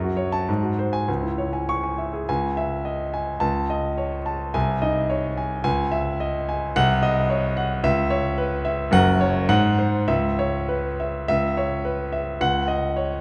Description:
classical, virtuoso piano study; 98-113 BPM; 2/4; rubato; C# minor; A4 = 440 Hz
warm grand piano; solo; 0.0-13.2 s; F#1 to C#6; -23 LUFS; equal
wet concert hall reverb, RT60 1.9 s; -23 LUFS; mono
0.0-2.3 A section; 2.3-11.3 B section; 11.3-13.2 B section
0.5 G#7; 1.1 C#m; 3.4 A/C#; 4.5 G#/B#; 5.7 C#m; 6.7 Cdim; 7.8 C#m; 8.9 F#5; 9.5 G#7; 10.1 C#m; 12.4 C#sus24
0.48 | 1.08 1.68 | 2.28 2.85 | 3.42 3.99 | 4.55 5.10 | 5.65 6.20 | 6.75 7.29 | 7.82 8.37 | 8.92 9.48 | 10.07 10.68 | 11.28 11.85 | 12.40 12.96

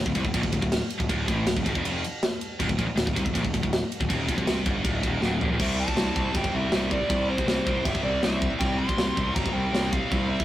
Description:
heavy metal; 160 BPM; 4/4; straight; A4 = 440 Hz
scooped high-gain guitar; riff; 0.0-10.4 s; D2 to C4; -29 LUFS; equal; distortion
fuzz picked electric bass; bass; 0.0-10.3 s; D1 to C2; -28 LUFS; equal; overdrive
tight metal drum kit; drums; 0.1-10.4 s; crash cymbal, kick drum, ride cymbal, snare drum, toms; -27 LUFS; equal
high-gain lead guitar; melody; 5.6-10.4 s; C5 to C6; -30 LUFS; right 1 dB; distortion
light reverb; rough rehearsal-room recording, warm saturation; -23 LUFS; side -13 dB against mid
0.0-5.6 A section; 5.6-10.4 B section
drum fill 5.2-5.6
0.0 Dm; 5.6 C
0.34 0.71 | 1.09 1.47 1.84 2.22 | 2.59 2.97 3.35 3.72 | 4.09 4.47 4.84 5.22 | 5.60 5.97 6.35 6.72 | 7.10 7.47 7.85 8.22 | 8.60 8.98 9.36 9.73 | 10.11

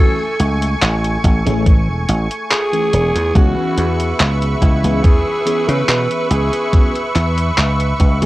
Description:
vaporwave; 71 BPM; 4/4; straight; A4 = 440 Hz
raspy alto saxophone; melody; 0.0-7.1 s; E4 to B4; -21 LUFS; right 1 dB; cassette tape, tape echo
FM electric piano with soft pad layer; accompaniment; 0.0-8.3 s; E3 to G#4; -23 LUFS; left 1 dB; lush chorus, analog delay
lush unison pad; sustained chords; 0.0-8.3 s; A3 to C#6; -22 LUFS; right 1 dB; chorus
dry thumbed slap bass; bass; 0.4-8.3 s; E1 to C#3; -16 LUFS; equal
detuned 8-bit digital drum machine; drums; 0.4-8.3 s; handclaps, hi-hat; -20 LUFS; equal
electronic kick drum; drums; 1.2-8.2 s; -12 LUFS; equal
light reverb; home recording on cassette; -13 LUFS; side -17 dB against mid
0.0-8.3 A section
0.0 Amaj7; 3.3 C#m7
0.81 1.66 2.50 | 3.35 4.19 5.04 5.88 | 6.73 7.58

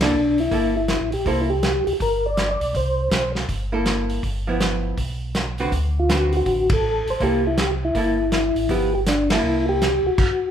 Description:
soul jazz organ trio; 162 BPM; 4/4; swing 64% on 8ths; A4 = 440 Hz
percussive tonewheel organ; melody; 0.0-3.3, 6.0-10.5 s; D4 to D5; -21 LUFS; left 1 dB; slow rotary speaker, chorus vibrato
archtop guitar, miked and amplified; accompaniment; 0.0-1.5, 3.7-9.8 s; D3 to B4; -25 LUFS; right 1 dB
mellow tonewheel organ; bass; 0.0-10.1 s; G1 to D2; -26 LUFS; equal; slow rotary speaker
warm soul drum kit; drums; 0.0-10.3 s; crash cymbal, hi-hat, kick drum, ride cymbal, snare drum; -24 LUFS; equal
light reverb; band playing live in one room; -19 LUFS; side -9 dB against mid
0.0-10.5 A section
band accent 6.7, 9.3
0.0 C13; 4.2 G6; 5.7 D6; 7.2 C6; 8.7 G13; 9.4 C6
0.15 0.52 0.89 | 1.26 1.63 2.00 2.38 | 2.75 3.12 3.49 3.86 | 4.23 4.61 4.98 5.35 | 5.72 6.09 6.46 6.84 | 7.21 7.58 7.95 8.32 | 8.69 9.06 9.44 9.81 | 10.18

